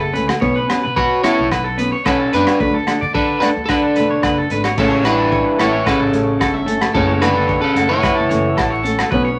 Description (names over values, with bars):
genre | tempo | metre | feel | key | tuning
highlife guitar band | 110 BPM | 4/4 | straight | A major | A4 = 440 Hz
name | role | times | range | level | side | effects
electric guitar at the edge of break-up | melody | 0.0-8.8 s | C#4 to E5 | -20 LUFS | equal | none
warm alto saxophone | second line | 0.0-8.8 s | C#3 to A4 | -24 LUFS | equal | none
electric guitar at the edge of break-up | arpeggios | 0.0-9.4 s | A4 to E5 | -24 LUFS | equal | none
upright bass | bass | 0.0-9.4 s | E1 to D3 | -27 LUFS | equal | none
fingerpicked old ladder-braced acoustic guitar | accompaniment | 0.1-9.3 s | E3 to D4 | -24 LUFS | equal | none
crunchy breakbeat drum kit | drums | 0.2-9.2 s | crash cymbal, hi-hat, kick drum, rim click | -26 LUFS | equal | none
agogo bells | percussion | 0.3-9.1 s | none | -29 LUFS | equal | none
mellow tonewheel organ | sustained chords | 4.8-9.4 s | E5 to E6 | -32 LUFS | equal | none
room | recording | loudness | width
wet studio reverb, RT60 0.8 s | vinyl crackle | -16 LUFS | mono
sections
0.0-4.8 A section; 4.8-9.4 B section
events
none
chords
0.4 Bsus2; 2.6 D; 4.8 A; 6.9 F#m7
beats
| 0.41 0.96 1.51 2.05 | 2.60 3.14 3.69 4.23 | 4.77 5.32 5.86 6.40 | 6.95 7.49 8.03 8.57 | 9.12